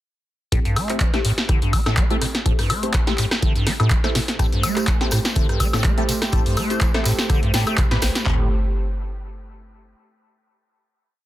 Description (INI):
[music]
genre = acid house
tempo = 124 BPM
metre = 4/4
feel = swing 54% on 16ths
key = A minor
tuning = A4 = 440 Hz
[part]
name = liquid acid bass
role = riff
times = 0.5-8.5 s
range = A1 to A3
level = -24 LUFS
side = equal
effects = phaser, overdrive, wide subtle chorus
[part]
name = filtered dub chord stab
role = stabs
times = 0.5-8.4 s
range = C4 to C5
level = -29 LUFS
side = left 1 dB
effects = phaser, wide subtle chorus, dub echo
[part]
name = booming analog drum machine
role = drums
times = 0.5-8.4 s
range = handclaps, kick drum, toms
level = -21 LUFS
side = equal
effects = none
[part]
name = punchy analog drum machine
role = drums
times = 0.5-8.2 s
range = handclaps, hi-hat, rim click, snare drum, woodblock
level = -24 LUFS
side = equal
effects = none
[part]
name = warm analog pad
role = sustained chords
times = 4.4-8.5 s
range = A3 to C5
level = -29 LUFS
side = right 2 dB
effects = chorus, sidechain pumping
[part]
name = tambourine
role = percussion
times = 4.4-8.2 s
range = none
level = -32 LUFS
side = right 1 dB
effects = none
[sound]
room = light reverb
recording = dense, heavily limited modern master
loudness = -18 LUFS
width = side -14 dB against mid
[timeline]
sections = 0.5-8.3 drop; 8.3-10.2 final chord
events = drop 0.5-8.3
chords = 0.5 Am7